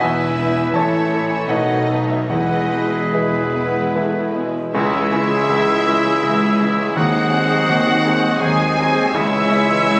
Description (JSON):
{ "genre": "classical, romantic movement for piano and orchestra", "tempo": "71-85 BPM", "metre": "3/4", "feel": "rubato", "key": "E major, C# minor from 4.7 s", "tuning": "A4 = 441 Hz", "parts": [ { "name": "bright concert grand piano", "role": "melody", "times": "0.0-10.0 s", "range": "A1 to A5", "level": "-23 LUFS", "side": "equal", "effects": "none" }, { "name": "warm symphonic violin section", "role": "melody", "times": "0.0-10.0 s", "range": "B4 to G#5", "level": "-27 LUFS", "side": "equal", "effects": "none" }, { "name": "clear clarinet", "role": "second line", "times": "0.0-10.0 s", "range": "G#4 to C#5", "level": "-28 LUFS", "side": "equal", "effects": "none" }, { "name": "hollow concert flute", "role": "second line", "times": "0.0-10.0 s", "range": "E5 to E6", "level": "-29 LUFS", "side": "equal", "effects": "none" }, { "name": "warm oboe", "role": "second line", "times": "0.0-10.0 s", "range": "E4 to E5", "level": "-27 LUFS", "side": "equal", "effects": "none" }, { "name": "warm symphonic violin section", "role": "second line", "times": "0.0-10.0 s", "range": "B#3 to E5", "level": "-34 LUFS", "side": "equal", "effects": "none" }, { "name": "clear bassoon", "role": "accompaniment", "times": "0.0-10.0 s", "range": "D#3 to B3", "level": "-31 LUFS", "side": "equal", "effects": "none" }, { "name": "rich symphonic viola section", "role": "accompaniment", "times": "0.0-10.0 s", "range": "E3 to E4", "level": "-29 LUFS", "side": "equal", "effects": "none" }, { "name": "mellow French horn section", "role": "sustained chords", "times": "0.0-10.0 s", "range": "G#3 to G#4", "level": "-28 LUFS", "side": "equal", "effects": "none" }, { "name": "rich symphonic cello section", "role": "bass", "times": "0.0-10.0 s", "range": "C#2 to B2", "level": "-28 LUFS", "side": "equal", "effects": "none" }, { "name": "warm symphonic double bass section", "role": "bass", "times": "0.0-10.0 s", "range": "E1 to D#2", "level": "-32 LUFS", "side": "equal", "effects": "none" }, { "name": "timpani", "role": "percussion", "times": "2.3-3.5 s", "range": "E2", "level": "-35 LUFS", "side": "equal", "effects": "none" }, { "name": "clear trombone section", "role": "sustained chords", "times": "4.7-10.0 s", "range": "none", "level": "barely audible", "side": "none", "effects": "none" }, { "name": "warm tuba", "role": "bass", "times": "4.7-10.0 s", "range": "C#2 to D#2", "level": "-28 LUFS", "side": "equal", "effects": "none" } ], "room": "moderate scoring stage reverb, RT60 1.9 s", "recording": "recorded on a phone in the room, studio reverb, compression", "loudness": "-17 LUFS", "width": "mono", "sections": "0.0-4.7 A section; 4.7-10.0 B section", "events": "none", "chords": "0.0 E; 0.8 A; 1.5 B7; 2.3 E; 4.7 C#m; 7.0 G#7/D#; 9.1 C#m", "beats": "| 0.03 0.76 1.50 | 2.30 3.14 3.95 | 4.75 5.50 6.23 | 6.97 7.69 8.42 | 9.14 9.86" }